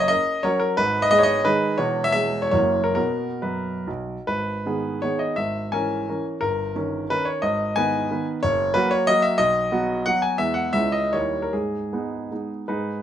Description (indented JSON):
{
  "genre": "classical, romantic triple-time dance for piano with dotted rhythms",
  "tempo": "126-196 BPM",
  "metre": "3/4",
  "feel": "rubato",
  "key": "B major, G# minor from 4.3 s",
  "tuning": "A4 = 440 Hz",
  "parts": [
    { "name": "warm baby grand piano", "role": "solo", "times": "0.0-13.0 s", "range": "E1 to G#5", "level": "-20 LUFS", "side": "equal", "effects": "none" }
  ],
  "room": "light reverb",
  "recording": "close, detailed microphones",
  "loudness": "-20 LUFS",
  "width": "side -10 dB against mid",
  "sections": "0.0-4.3 A section; 4.3-12.7 B section",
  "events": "none",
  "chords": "0.0 F#; 0.8 G#m; 1.8 E6; 2.5 F#7; 3.0 B5; 4.3 G#m; 5.4 A#m7b5/G#; 6.4 D#7/G; 7.4 G#m; 8.4 F#; 9.4 B; 10.4 E; 10.7 C#m; 11.1 D#7b9; 11.5 G#m"
}